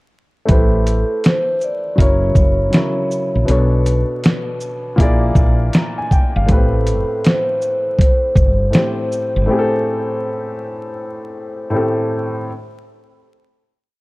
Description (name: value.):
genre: lo-fi hip hop.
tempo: 80 BPM.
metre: 4/4.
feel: swing 65% on 16ths.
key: A dorian.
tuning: A4 = 439 Hz.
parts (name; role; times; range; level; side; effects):
vibraphone with soft mallets; melody; 0.5-11.7 s; A4 to D5; -21 LUFS; equal; low-pass filter.
warm upright piano; accompaniment; 0.5-12.5 s; A2 to Bb5; -20 LUFS; left 1 dB; cassette tape, low-pass filter.
woody fretless electric bass; bass; 0.5-9.5 s; F#1 to B1; -16 LUFS; equal; none.
dusty soul sampler-style drum kit; drums; 0.5-9.3 s; hi-hat, kick drum, shaker, snare drum; -14 LUFS; equal; none.
room: little or no reverb.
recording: dark, warm production, vinyl crackle.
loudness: -14 LUFS.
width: side -22 dB against mid.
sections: 0.5-12.5 A section.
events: none.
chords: 0.5 Am7; 2.0 F#7; 3.5 Bm9; 5.0 Bb7#11; 6.5 Am7.